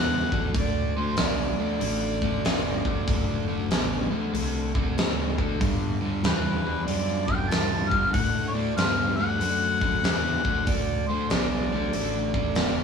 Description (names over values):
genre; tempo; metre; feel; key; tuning
blues rock power trio and southern rock; 95 BPM; 4/4; swing 64% on 8ths; D mixolydian; A4 = 440 Hz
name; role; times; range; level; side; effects
mellow harmonica; melody; 0.0-12.8 s; E4 to A5; -29 LUFS; equal; overdrive
crunchy overdriven guitar; riff; 0.0-12.8 s; G2 to B3; -28 LUFS; left 1 dB; none
fuzz fingered electric bass; bass; 0.0-12.8 s; E1 to A2; -31 LUFS; equal; overdrive
big rock drum kit; drums; 0.3-12.8 s; hi-hat, kick drum, snare drum; -27 LUFS; equal; none
room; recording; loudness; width
moderate stone room reverb, RT60 0.9 s; band playing live in one room, small room ambience; -23 LUFS; side -6 dB against mid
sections
0.0-12.8 A section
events
none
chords
0.0 D5; 5.6 G; 8.1 D